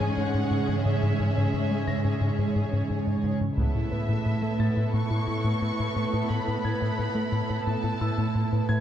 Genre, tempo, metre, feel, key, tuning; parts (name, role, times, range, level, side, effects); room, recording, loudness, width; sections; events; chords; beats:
cinematic, hybrid orchestral and electronic film score; 88 BPM; 4/4; straight; A4 = 440 Hz
rich symphonic violin section; melody; 0.0-8.7 s; E5 to C#6; -36 LUFS; left 1 dB
warm symphonic violin section; second line; 0.0-8.8 s; E4 to C#5; -35 LUFS; left 1 dB
clear symphonic viola section; accompaniment; 0.0-8.8 s; G#3 to C#4; -37 LUFS; right 2 dB
soft additive organ-like pad; sustained chords; 0.0-8.8 s; G#3 to E5; -34 LUFS; equal; ensemble chorus, built-in reverb
harp-like synth pluck; arpeggios; 0.0-8.8 s; C#3 to B4; -33 LUFS; right 3 dB; chorus
rubbery square bass; riff; 0.0-8.8 s; G#2 to A3; -28 LUFS; left 2 dB
rich symphonic cello section; bass; 0.0-8.8 s; G#2 to A2; -30 LUFS; right 2 dB
bright concert grand piano; texture; 0.0-8.8 s; E5 to A#6; -42 LUFS; left 1 dB; digital delay
taiko ensemble; drums; 3.6-4.9 s; -30 LUFS; right 1 dB
moderate scoring stage reverb, RT60 2.1 s; dark, warm production; -24 LUFS; side -10 dB against mid
0.0-8.8 A section
0.0 C#m/G#; 3.6 Asus2
0.17 | 0.85 1.53 2.21 2.89 | 3.57 4.26 4.94 5.62 | 6.30 6.98 7.67 8.35